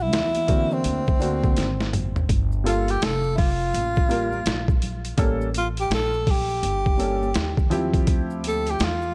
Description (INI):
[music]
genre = hip hop, jazz-hop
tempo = 83 BPM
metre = 4/4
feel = swing 63% on 16ths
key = D minor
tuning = A4 = 440 Hz
[part]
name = breathy tenor saxophone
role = melody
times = 0.0-9.1 s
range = C4 to A4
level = -28 LUFS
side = equal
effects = tape echo
[part]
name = upright bass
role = bass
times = 0.0-9.1 s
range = F1 to E2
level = -30 LUFS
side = equal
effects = tube saturation
[part]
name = boom bap sampler-style drum kit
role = drums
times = 0.1-9.0 s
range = hi-hat, kick drum, snare drum, toms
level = -26 LUFS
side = equal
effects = overdrive, vintage 12-bit sampler grit
[part]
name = maracas and congas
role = percussion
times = 0.1-9.1 s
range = none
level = -41 LUFS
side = equal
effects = none
[part]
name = warm baby grand piano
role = accompaniment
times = 0.5-8.7 s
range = D3 to Bb4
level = -29 LUFS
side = equal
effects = none
[sound]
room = small room ambience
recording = dry, gritty hardware recording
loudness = -23 LUFS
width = mono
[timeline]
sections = 0.0-9.1 A section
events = drum fill 1.6-2.3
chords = 0.0 Amadd11; 0.8 Daug7; 2.3 Gm9; 5.2 A7b9; 8.1 Dm11